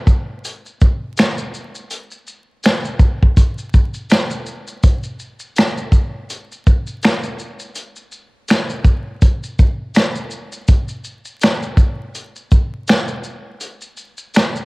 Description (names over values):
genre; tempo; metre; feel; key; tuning
hip hop; 82 BPM; 4/4; swing 57% on 16ths; none; none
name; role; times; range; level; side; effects
vintage drum kit; drums; 0.1-14.7 s; finger snaps, hi-hat, kick drum, shaker, snare drum; -14 LUFS; equal; cassette tape
room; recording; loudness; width
light reverb; home recording on cassette, vinyl crackle; -14 LUFS; side -26 dB against mid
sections
0.0-4.8 A section; 4.8-14.7 B section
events
none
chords
none